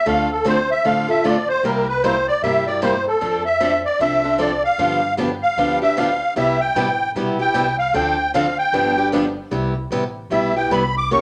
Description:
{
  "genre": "acoustic string swing (jazz manouche)",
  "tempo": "152 BPM",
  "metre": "4/4",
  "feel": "swing 61% on 8ths",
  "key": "C major",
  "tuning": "A4 = 440 Hz",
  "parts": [
    { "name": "musette accordion", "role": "melody", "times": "0.0-11.2 s", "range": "A4 to D6", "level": "-20 LUFS", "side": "equal", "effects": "none" },
    { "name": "picked steel-string acoustic guitar", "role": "accompaniment", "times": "0.1-11.2 s", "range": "C3 to Bb4", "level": "-24 LUFS", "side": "equal", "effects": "none" },
    { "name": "picked swing-style acoustic guitar", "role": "accompaniment", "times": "0.1-9.2 s", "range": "C3 to A4", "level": "-30 LUFS", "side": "equal", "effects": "none" },
    { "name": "upright bass", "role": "bass", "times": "0.1-11.2 s", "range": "G1 to G2", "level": "-34 LUFS", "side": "equal", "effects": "none" }
  ],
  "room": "moderate large studio reverb, RT60 0.8 s",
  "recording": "none",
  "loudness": "-19 LUFS",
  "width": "mono",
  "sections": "0.0-9.5 A section; 9.5-11.2 A section",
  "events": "accordion solo 0.0-11.2",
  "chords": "0.1 Dm7; 1.6 C7; 3.2 F6; 4.8 G7; 6.4 Cmaj7; 7.9 Dm7; 8.7 G7; 9.5 Cmaj7",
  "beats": "| 0.06 0.46 0.85 1.24 | 1.64 2.03 2.42 2.82 | 3.21 3.60 4.00 4.39 | 4.79 5.18 5.57 5.97 | 6.36 6.76 7.15 7.54 | 7.94 8.34 8.73 9.12 | 9.52 9.92 10.31 10.71 | 11.10"
}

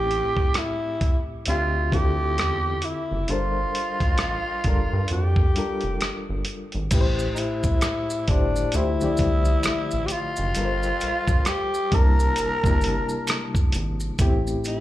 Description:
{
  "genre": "R&B, neo-soul",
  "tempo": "66 BPM",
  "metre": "4/4",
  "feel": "swing 60% on 16ths",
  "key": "G dorian",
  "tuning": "A4 = 440 Hz",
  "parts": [
    { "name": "growling tenor saxophone", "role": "melody", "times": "0.0-14.8 s", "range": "D4 to Bb4", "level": "-26 LUFS", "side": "equal", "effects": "slapback echo" },
    { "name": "bright reed electric piano", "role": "accompaniment", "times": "0.0-14.8 s", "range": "A2 to A5", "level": "-28 LUFS", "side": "left 2 dB", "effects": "fast tremolo, slapback echo" },
    { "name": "rubbery square bass", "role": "bass", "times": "0.0-14.6 s", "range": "F1 to G2", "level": "-25 LUFS", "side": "equal", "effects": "none" },
    { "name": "dusty soul sampler-style drum kit", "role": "drums", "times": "0.1-14.8 s", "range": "crash cymbal, hi-hat, kick drum, rim click", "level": "-24 LUFS", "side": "equal", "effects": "none" },
    { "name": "maracas and finger snaps", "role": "percussion", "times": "6.9-14.8 s", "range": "none", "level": "-37 LUFS", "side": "right 3 dB", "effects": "none" }
  ],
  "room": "studio ambience",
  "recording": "live gig heard through the venue's PA, club ambience",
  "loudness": "-21 LUFS",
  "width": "side -14 dB against mid",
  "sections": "0.0-6.9 A section; 6.9-14.8 B section",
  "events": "none",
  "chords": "0.0 Am7; 1.5 Dm11; 3.3 Gm11; 4.6 Gm9; 6.9 Am7; 8.7 Dm11; 10.6 Gm11; 11.9 C13; 14.2 Am7",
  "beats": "0.55 1.46 2.37 | 3.28 4.19 5.10 6.00 | 6.91 7.82 8.73 9.64 | 10.55 11.46 12.37 13.28 | 14.19"
}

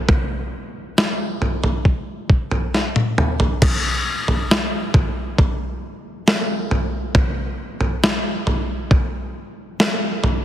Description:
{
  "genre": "pop",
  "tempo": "68 BPM",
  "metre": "4/4",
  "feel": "straight",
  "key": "none",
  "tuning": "none",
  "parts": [
    { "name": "boom bap sampler-style drum kit", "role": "drums", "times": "0.1-10.4 s", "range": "crash cymbal, kick drum, snare drum, toms", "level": "-18 LUFS", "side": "equal", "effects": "none" }
  ],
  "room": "moderate plate reverb, RT60 3.2 s",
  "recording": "heavily compressed radio sound",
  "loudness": "-18 LUFS",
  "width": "side -11 dB against mid",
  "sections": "0.0-3.6 A section; 3.6-10.4 B section",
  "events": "drum fill 2.7-3.6",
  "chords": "none",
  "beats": "| 0.09 0.97 1.85 2.73 | 3.62 4.50 5.38 6.26 | 7.15 8.03 8.91 9.79"
}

